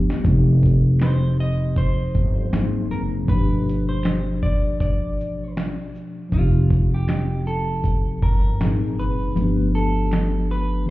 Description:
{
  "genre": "lo-fi hip hop",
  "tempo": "79 BPM",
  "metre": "4/4",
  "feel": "swing 58% on 16ths",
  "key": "unclear",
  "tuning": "A4 = 440 Hz",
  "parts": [
    { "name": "mellow tine electric piano", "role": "accompaniment", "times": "0.0-10.9 s", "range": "Bb2 to Ab4", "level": "-25 LUFS", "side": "left 2 dB", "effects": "medium stereo tremolo" },
    { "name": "dusty soul sampler-style drum kit", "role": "drums", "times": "0.1-10.7 s", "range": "finger snaps, hi-hat, kick drum, shaker, snare drum", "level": "-23 LUFS", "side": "equal", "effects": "vintage 12-bit sampler grit" },
    { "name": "upright bass", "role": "bass", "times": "0.2-10.9 s", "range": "F1 to A1", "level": "-21 LUFS", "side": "equal", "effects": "none" },
    { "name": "clean electric guitar", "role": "melody", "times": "1.0-10.9 s", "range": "F4 to Eb5", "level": "-30 LUFS", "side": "right 2 dB", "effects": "tape echo" },
    { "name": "finger snaps", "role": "percussion", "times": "1.0-10.3 s", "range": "none", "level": "-50 LUFS", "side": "right 4 dB", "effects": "none" }
  ],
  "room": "digital ambience",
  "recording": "heard muffled through a wall, club reverb, EQ",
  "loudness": "-18 LUFS",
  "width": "side -17 dB against mid",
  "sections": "0.0-10.9 A section",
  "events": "drum fill 0.0; kick muted 9.4-10.9",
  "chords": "0.2 F7; 2.5 Ab9; 3.3 G9; 6.3 F7; 8.6 Ab9; 9.4 G9",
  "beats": "| 0.25 1.01 1.77 2.53 | 3.29 4.05 4.80 5.57 | 6.32 7.08 7.84 8.60 | 9.36 10.12 10.88"
}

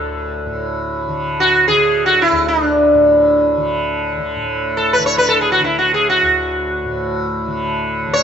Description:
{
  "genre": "indian classical, Hindustani",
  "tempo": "free time",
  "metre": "none",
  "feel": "none",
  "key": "unclear",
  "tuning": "A4 = 440 Hz",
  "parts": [
    { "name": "sitar", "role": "melody", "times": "0.0-8.2 s", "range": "D4 to C#5", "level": "-14 LUFS", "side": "equal", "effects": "none" },
    { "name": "tanpura", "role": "drone", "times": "0.0-8.2 s", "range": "D2 to D3", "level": "-21 LUFS", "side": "equal", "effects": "none" }
  ],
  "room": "moderate lush hall reverb, RT60 2.5 s",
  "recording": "rough home demo mix, nothing above 7.8 kHz",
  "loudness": "-13 LUFS",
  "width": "side -8 dB against mid",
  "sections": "0.0-4.4 A section; 4.4-8.2 A section",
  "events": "none",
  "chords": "none",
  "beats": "free time"
}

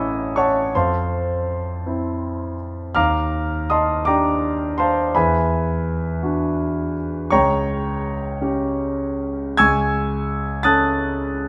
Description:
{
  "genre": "classical, impressionist solo piano",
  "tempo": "55 BPM (dotted quarters)",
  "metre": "6/8",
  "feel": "rubato",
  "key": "unclear",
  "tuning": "A4 = 440 Hz",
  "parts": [
    { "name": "clear concert grand piano", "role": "solo", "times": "0.0-11.5 s", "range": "A1 to A6", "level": "-21 LUFS", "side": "equal", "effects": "none" }
  ],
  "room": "moderate large studio reverb, RT60 1.4 s",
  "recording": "none",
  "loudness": "-21 LUFS",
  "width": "mono",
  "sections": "0.0-11.5 A section",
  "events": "none",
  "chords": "0.0 A6; 0.7 Fmaj7; 2.9 D#maj9; 5.1 Esus2; 7.3 Gdim/Db; 9.6 Amaj7/C#",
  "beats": "| 0.74 1.85 | 2.94 4.05 | 5.14 6.23 | 7.31 8.40 | 9.57 10.65"
}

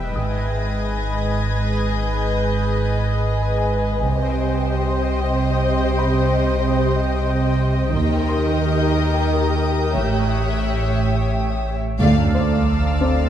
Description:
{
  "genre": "cinematic, suspense film score",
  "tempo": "92 BPM",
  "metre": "3/4",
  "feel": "straight",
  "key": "unclear",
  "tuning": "A4 = 440 Hz",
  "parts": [
    { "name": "warm symphonic violin section", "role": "melody", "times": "0.0-13.3 s", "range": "D#5 to F5", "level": "-29 LUFS", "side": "left 4 dB", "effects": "none" },
    { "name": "warm symphonic violin section", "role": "second line", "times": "0.0-13.3 s", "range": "G4 to D5", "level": "-26 LUFS", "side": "left 2 dB", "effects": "none" },
    { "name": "bubbling stepped-filter texture", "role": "sustained chords", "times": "0.0-13.3 s", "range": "A#4 to G#5", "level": "-28 LUFS", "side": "equal", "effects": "chorus, built-in reverb" },
    { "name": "warm studio cello section", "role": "bass", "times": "0.0-13.3 s", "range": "D2 to D#3", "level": "-22 LUFS", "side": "right 4 dB", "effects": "none" },
    { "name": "punchy sub bass", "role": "drone", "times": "0.0-13.3 s", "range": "E1 to D#2", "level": "-23 LUFS", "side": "left 1 dB", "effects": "none" },
    { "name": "felt-muted upright piano", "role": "texture", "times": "0.0-13.3 s", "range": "C4 to D#6", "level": "-30 LUFS", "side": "left 3 dB", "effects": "none" },
    { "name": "dark symphonic double bass section", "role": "bass", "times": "0.2-0.8, 4.1-4.7, 8.0-13.3 s", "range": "G#1 to D#2", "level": "-25 LUFS", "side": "right 3 dB", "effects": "none" },
    { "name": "warm symphonic violin section", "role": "texture", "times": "0.2-13.3 s", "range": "A5 to A#6", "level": "-35 LUFS", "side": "left 4 dB", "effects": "none" },
    { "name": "dark symphonic viola section", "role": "accompaniment", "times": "12.0-13.3 s", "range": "A3", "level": "-24 LUFS", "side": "right 2 dB", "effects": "none" },
    { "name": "sub drop", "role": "sound effects", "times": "12.0-13.3 s", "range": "none", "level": "-25 LUFS", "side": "left 1 dB", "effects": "none" }
  ],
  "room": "moderate scoring stage reverb, RT60 1.6 s",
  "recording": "dark, warm production",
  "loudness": "-17 LUFS",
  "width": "side -10 dB against mid",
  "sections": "0.0-12.0 A section; 12.0-13.3 B section",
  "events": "band accent 12.0-12.7; impact 12.0-13.3",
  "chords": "0.2 G#m; 4.1 Cm; 8.0 D#; 10.0 A7; 12.0 Dm",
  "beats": "| 0.15 0.81 1.47 | 2.12 2.77 3.42 | 4.06 4.70 5.35 | 6.00 6.65 7.30 | 7.95 8.61 9.28 | 9.96 10.64 11.33 | 12.01 12.68"
}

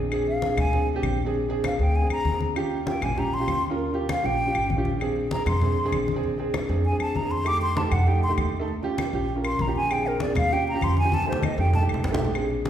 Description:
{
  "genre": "Afro-Cuban jazz",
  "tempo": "196 BPM",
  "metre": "4/4",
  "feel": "straight",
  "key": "Bb mixolydian",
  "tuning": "A4 = 440 Hz",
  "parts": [
    { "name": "dark upright piano", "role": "accompaniment", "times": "0.0-12.7 s", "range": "A3 to Bb4", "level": "-27 LUFS", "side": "right 2 dB", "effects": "none" },
    { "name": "upright bass", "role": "bass", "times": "0.0-12.7 s", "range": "Ab1 to F2", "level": "-27 LUFS", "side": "equal", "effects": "none" },
    { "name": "claves", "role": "percussion", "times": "0.1-12.5 s", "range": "none", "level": "-38 LUFS", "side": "left 4 dB", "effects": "none" },
    { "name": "congas", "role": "percussion", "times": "0.1-12.7 s", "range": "none", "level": "-31 LUFS", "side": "left 2 dB", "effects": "none" },
    { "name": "breathy mellow silver concert flute", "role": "melody", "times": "0.3-11.8 s", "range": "Bb4 to D6", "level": "-28 LUFS", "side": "equal", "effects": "none" }
  ],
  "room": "wet recital hall reverb, RT60 1.5 s",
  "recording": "recorded in a church or concert hall",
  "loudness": "-22 LUFS",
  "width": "side -10 dB against mid",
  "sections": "0.0-12.3 A section",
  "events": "flute solo 0.0-12.3; drum fill 11.1-12.3",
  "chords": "0.0 Bb7; 2.6 Eb7; 5.0 Bb7; 7.5 F7; 8.7 Eb7; 9.9 Bb7; 10.5 Eb7; 11.1 F7",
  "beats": "| 0.12 0.42 0.73 1.03 | 1.34 1.64 1.95 2.25 | 2.56 2.87 3.17 3.48 | 3.78 4.09 4.40 4.70 | 5.01 5.32 5.62 5.93 | 6.23 6.54 6.85 7.15 | 7.46 7.76 8.07 8.38 | 8.68 8.99 9.29 9.60 | 9.90 10.21 10.51 10.82 | 11.13 11.43 11.74 12.04 | 12.35 12.66"
}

